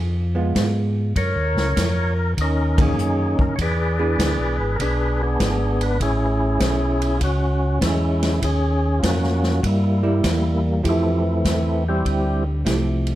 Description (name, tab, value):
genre	soul jazz organ trio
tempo	99 BPM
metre	4/4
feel	swing 67% on 8ths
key	unclear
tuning	A4 = 439 Hz
part	tonewheel organ	bass	0.0-13.2 s	G#1 to Ab2	-21 LUFS	equal	chorus vibrato, slow rotary speaker
part	hollow-body jazz guitar	accompaniment	0.3-4.8, 10.0-13.2 s	Eb3 to G#4	-25 LUFS	right 2 dB	none
part	swinging big-band drum kit	drums	0.6-13.2 s	hi-hat, kick drum, ride cymbal, snare drum	-24 LUFS	equal	none
part	percussive tonewheel organ	melody	1.2-12.4 s	E3 to D5	-22 LUFS	equal	slow rotary speaker
room	moderate large studio reverb, RT60 1.2 s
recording	dark, warm production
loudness	-18 LUFS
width	side -14 dB against mid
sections	0.0-10.8 A section; 10.8-13.2 B section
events	band accent 2.7-3.0; tonewheel organ solo 10.8-13.2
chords	0.0 Db7 (rootless); 1.2 Gb6; 3.6 E7; 6.0 Amaj7; 8.4 Ebm7; 9.6 Edim; 10.8 Fmaj9